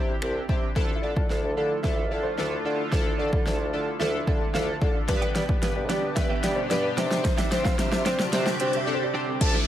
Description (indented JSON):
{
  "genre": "dance-pop",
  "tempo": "111 BPM",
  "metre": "4/4",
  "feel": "straight",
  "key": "D dorian",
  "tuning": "A4 = 440 Hz",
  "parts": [
    { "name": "chorused retro synth keys", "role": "accompaniment", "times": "0.0-9.6 s", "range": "B3 to D5", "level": "-31 LUFS", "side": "left 1 dB", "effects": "analog delay" },
    { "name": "mellow bassoon", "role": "bass", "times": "0.0-9.6 s", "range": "C2 to C4", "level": "-28 LUFS", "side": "equal", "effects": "sidechain pumping" },
    { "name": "deep house drum kit", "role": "drums", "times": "0.2-9.5 s", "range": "crash cymbal, finger snaps, hi-hat, kick drum, snare drum", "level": "-26 LUFS", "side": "equal", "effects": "overdrive" },
    { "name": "sweeping resonant pad", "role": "sustained chords", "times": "0.8-9.7 s", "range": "B2 to G4", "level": "-35 LUFS", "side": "equal", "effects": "chorus, sidechain pumping" },
    { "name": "riser and downlifter", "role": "sound effects", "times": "3.9-9.7 s", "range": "none", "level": "-36 LUFS", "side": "right 1 dB", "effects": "none" },
    { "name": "warm grand piano", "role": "melody", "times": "0.9-9.1 s", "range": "C5 to F5", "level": "-35 LUFS", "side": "right 3 dB", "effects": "analog delay" },
    { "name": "direct-recorded clean electric guitar", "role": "riff", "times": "5.1-9.7 s", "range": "F3 to G4", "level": "-35 LUFS", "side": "right 6 dB", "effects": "lush chorus, analog delay" },
    { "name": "expressive synth lead", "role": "melody", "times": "9.4-9.5 s", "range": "A5", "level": "-31 LUFS", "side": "equal", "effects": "chorus, sidechain pumping" }
  ],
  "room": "light reverb, digital ambience",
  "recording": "echo-heavy mix, lossy compression artefacts",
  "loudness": "-23 LUFS",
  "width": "side -11 dB against mid",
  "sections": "0.8-9.4 A section",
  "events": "build-up 0.8-9.4; drum fill 0.8-8.9; riser 3.9-9.4; break 8.9-9.4",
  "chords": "0.0 Cadd9; 0.8 Dmadd9; 5.1 G; 7.0 Csus2"
}